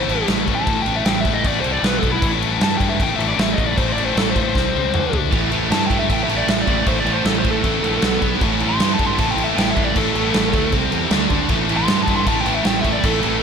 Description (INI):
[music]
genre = hard rock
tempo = 155 BPM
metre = 4/4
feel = straight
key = A minor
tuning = A4 = 440 Hz
[part]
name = biting lead guitar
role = melody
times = 0.0-13.4 s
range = E4 to C6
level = -24 LUFS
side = right 1 dB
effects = overdrive, slapback echo, analog delay
[part]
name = high-gain distorted guitar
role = riff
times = 0.0-13.4 s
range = A2 to D4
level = -22 LUFS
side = left 10 dB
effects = distortion, slapback echo
[part]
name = fuzz fingered electric bass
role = bass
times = 0.0-13.4 s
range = A1 to A2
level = -25 LUFS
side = equal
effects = overdrive
[part]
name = big rock drum kit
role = drums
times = 0.1-13.3 s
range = crash cymbal, kick drum, snare drum, toms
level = -20 LUFS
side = right 1 dB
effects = none
[part]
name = overdriven electric guitar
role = riff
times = 5.3-13.4 s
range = A2 to D4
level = -24 LUFS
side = right 12 dB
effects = slapback echo
[sound]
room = moderate lush hall reverb, RT60 1.6 s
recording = big arena sound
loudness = -16 LUFS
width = side -6 dB against mid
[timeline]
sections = 0.0-13.4 A section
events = lead electric guitar solo 0.0-13.4; drum fill 4.6-5.3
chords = 0.0 Am; 1.8 B5; 2.2 A5; 4.6 C5; 4.9 D5; 5.3 A5; 8.0 B5; 8.4 A5; 10.7 C5; 11.1 D5; 11.5 A5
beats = 0.28 | 0.67 1.06 1.45 1.84 | 2.22 2.61 3.00 3.39 | 3.78 4.17 4.55 4.94 | 5.33 5.71 6.10 6.49 | 6.88 7.26 7.65 8.03 | 8.42 8.80 9.19 9.57 | 9.96 10.34 10.73 11.11 | 11.50 11.88 12.27 12.65 | 13.04 13.42